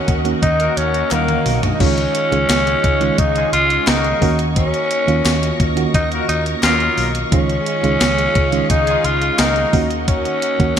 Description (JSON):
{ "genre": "1980s-style pop", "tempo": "87 BPM", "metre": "4/4", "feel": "straight", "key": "unclear", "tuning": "A4 = 440 Hz", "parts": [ { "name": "breathy tenor saxophone", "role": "melody", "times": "0.0-10.8 s", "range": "A#3 to E#4", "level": "-18 LUFS", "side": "left 1 dB", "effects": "ping-pong delay" }, { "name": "FM electric piano with tremolo", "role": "accompaniment", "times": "0.0-10.8 s", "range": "D#3 to F#4", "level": "-22 LUFS", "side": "right 6 dB", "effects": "none" }, { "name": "string machine, cellos", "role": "sustained chords", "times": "0.0-10.8 s", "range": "G#4 to C#6", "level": "-24 LUFS", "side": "left 1 dB", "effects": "ensemble chorus" }, { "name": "vintage muted fingered electric bass", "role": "bass", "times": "0.1-10.8 s", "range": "B1 to D#2", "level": "-22 LUFS", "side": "left 1 dB", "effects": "none" }, { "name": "gated 80s digital drum machine", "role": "drums", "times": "0.1-10.8 s", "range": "crash cymbal, hi-hat, kick drum, snare drum, tambourine, toms", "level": "-19 LUFS", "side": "equal", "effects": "gated reverb, gated reverb snare" }, { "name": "clear horn section", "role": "stabs", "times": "0.6-9.9 s", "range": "F#3 to A#4", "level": "-27 LUFS", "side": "left 4 dB", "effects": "none" }, { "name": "group handclap", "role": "percussion", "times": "1.1-10.8 s", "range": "none", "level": "-34 LUFS", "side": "left 9 dB", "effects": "none" } ], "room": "moderate plate reverb, RT60 2.8 s", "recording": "bright 1980s-style digital production", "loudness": "-14 LUFS", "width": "side -8 dB against mid", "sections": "0.0-10.8 A section", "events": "drum fill 1.1-1.8", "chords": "0.0 D#m7; 1.8 C#add9; 4.2 D#m7; 7.3 C#add9; 9.7 D#m7" }